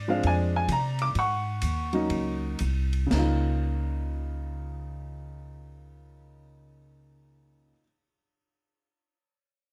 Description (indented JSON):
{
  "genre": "jazz piano trio",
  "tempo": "115-134 BPM",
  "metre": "4/4",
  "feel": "swing 65% on 8ths",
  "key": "Db major",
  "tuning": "A4 = 440 Hz",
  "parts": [
    { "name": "warm baby grand piano", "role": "melody", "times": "0.0-7.8 s", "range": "Db3 to D6", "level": "-31 LUFS", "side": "equal", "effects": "none" },
    { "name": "upright bass", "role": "bass", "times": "0.0-7.7 s", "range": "C2 to C3", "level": "-31 LUFS", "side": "equal", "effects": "none" },
    { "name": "open jazz drum kit", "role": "drums", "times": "0.2-3.3 s", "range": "crash cymbal, hi-hat, ride cymbal, snare drum", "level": "-40 LUFS", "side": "equal", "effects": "none" }
  ],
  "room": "light reverb",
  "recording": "none",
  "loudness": "-28 LUFS",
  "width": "mono",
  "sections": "0.0-3.1 A section; 3.1-7.3 B section",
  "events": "slowing down 0.0-3.1",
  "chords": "0.0 Bb9; 1.2 Ab9sus4; 3.1 Db69"
}